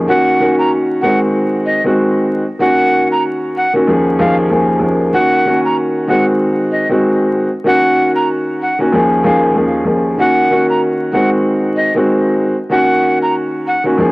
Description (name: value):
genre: hip hop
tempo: 95 BPM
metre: 4/4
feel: swing 59% on 16ths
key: Eb dorian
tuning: A4 = 440 Hz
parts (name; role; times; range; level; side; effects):
- warm upright piano; accompaniment; 0.0-14.1 s; Eb2 to Ab4; -12 LUFS; equal; cassette tape, high-pass filter, low-pass filter
- breathy bright jazz flute; melody; 0.1-13.8 s; Eb5 to Bb5; -17 LUFS; equal; high-pass filter, low-pass filter
room: light reverb, small room ambience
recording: dry, gritty hardware recording, vinyl crackle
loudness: -11 LUFS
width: side -22 dB against mid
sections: 0.0-14.1 A section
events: none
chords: 0.1 Ebm7; 1.0 Ab7/Eb; 2.6 Ebm7; 3.9 Bbm7/Eb; 5.1 Ebm7; 6.1 Ab7/Eb; 7.7 Ebm7; 8.9 Bbm7/Eb; 10.2 Ebm7; 11.1 Ab7/Eb; 12.7 Ebm7